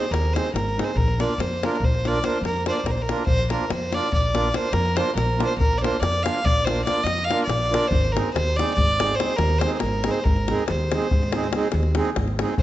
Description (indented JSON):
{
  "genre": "balkan folk, Balkan wedding band",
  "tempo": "284 BPM (eighths)",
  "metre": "11/8",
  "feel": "straight",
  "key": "Bb mixolydian",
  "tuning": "A4 = 439 Hz",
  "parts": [
    { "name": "rich fiddle", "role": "melody", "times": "0.0-12.6 s", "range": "Bb4 to F5", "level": "-25 LUFS", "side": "equal", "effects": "none" },
    { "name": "accordion", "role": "accompaniment", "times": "0.0-12.5 s", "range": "Ab3 to Bb4", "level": "-27 LUFS", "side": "right 3 dB", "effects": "none" },
    { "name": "upright bass", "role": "bass", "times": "0.1-12.6 s", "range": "Ab1 to F2", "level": "-25 LUFS", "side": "equal", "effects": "none" },
    { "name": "davul", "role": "percussion", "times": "0.1-12.6 s", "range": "none", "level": "-26 LUFS", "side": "left 2 dB", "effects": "none" }
  ],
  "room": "moderate recital hall reverb, RT60 1.5 s",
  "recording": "nothing above 7.9 kHz",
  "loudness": "-20 LUFS",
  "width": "side -14 dB against mid",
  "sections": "0.0-3.3 A section; 3.3-12.6 A section",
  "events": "none",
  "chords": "0.0 Ab; 1.0 Bb; 7.9 Ab"
}